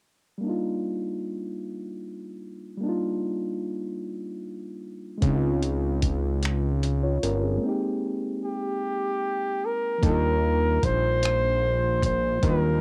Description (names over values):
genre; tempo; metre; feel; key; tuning
slow six-eight R&B; 50 BPM (dotted quarters); 6/8; straight; Eb major; A4 = 442 Hz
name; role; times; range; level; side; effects
mellow reed electric piano; accompaniment; 0.4-12.8 s; F3 to Db5; -32 LUFS; equal; none
fat analog bass; bass; 5.2-12.8 s; G1 to Eb2; -27 LUFS; equal; none
dusty soul sampler-style drum kit; drums; 5.2-12.6 s; finger snaps, hi-hat, kick drum; -29 LUFS; equal; none
warm flugelhorn; melody; 8.4-12.8 s; G4 to C5; -28 LUFS; equal; cassette tape
room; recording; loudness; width
light reverb; home recording on cassette; -26 LUFS; mono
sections
0.4-10.0 A section; 10.0-12.8 B section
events
break 7.6-10.0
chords
0.4 Ebmaj9; 5.2 Dbmaj9; 7.6 Abmaj9; 10.0 Ebmaj9